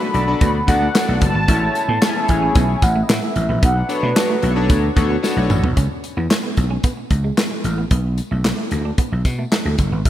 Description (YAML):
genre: early-eighties boogie funk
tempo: 112 BPM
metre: 4/4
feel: straight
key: B dorian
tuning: A4 = 440 Hz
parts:
  - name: mellow horn-like synth lead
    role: melody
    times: 0.0-4.4 s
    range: B4 to B5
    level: -22 LUFS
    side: right 1 dB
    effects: chorus
  - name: chorused polysynth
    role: accompaniment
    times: 0.0-5.6 s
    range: G#3 to D5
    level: -23 LUFS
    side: left 4 dB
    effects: none
  - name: warm analog pad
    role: sustained chords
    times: 0.0-5.7 s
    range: D3 to F#4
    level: -31 LUFS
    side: equal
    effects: chorus
  - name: clean electric guitar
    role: riff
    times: 0.0-10.1 s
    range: G#3 to D4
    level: -29 LUFS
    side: right 4 dB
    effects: analog chorus
  - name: vintage slap bass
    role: bass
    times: 0.1-10.1 s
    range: F#1 to B2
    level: -19 LUFS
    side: equal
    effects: none
  - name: modern studio drum kit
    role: drums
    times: 0.1-10.1 s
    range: handclaps, hi-hat, kick drum, snare drum, toms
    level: -19 LUFS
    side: equal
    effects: gated reverb
  - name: tambourine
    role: percussion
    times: 0.4-9.9 s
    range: none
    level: -38 LUFS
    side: left 4 dB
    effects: none
room: moderate lush hall reverb, RT60 2.5 s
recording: bright 1980s-style digital production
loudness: -15 LUFS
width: side -12 dB against mid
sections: 0.0-5.8 A section; 5.8-10.1 B section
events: drum fill 5.2-5.8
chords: 0.0 Bm7; 1.5 Amaj7; 3.6 Bm9; 5.8 C#7(no3); 7.9 Bm7